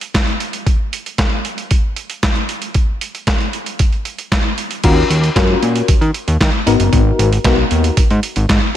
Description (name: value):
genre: early-eighties boogie funk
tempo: 115 BPM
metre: 4/4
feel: straight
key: Eb minor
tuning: A4 = 444 Hz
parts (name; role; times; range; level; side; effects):
- boom bap sampler-style drum kit; drums; 0.0-8.6 s; crash cymbal, handclaps, hi-hat, kick drum, snare drum; -16 LUFS; equal; none
- FM electric piano with tremolo; accompaniment; 4.8-8.0 s; Cb4 to Bb4; -17 LUFS; left 5 dB; phaser, slapback echo
- fat analog bass; bass; 4.8-8.6 s; Gb1 to Eb3; -15 LUFS; equal; none
room: light reverb, digital ambience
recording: none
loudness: -13 LUFS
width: side -11 dB against mid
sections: 0.0-4.8 A section; 4.8-8.8 B section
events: none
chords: 0.0 N.C.; 4.8 Ebm7; 6.7 Abm9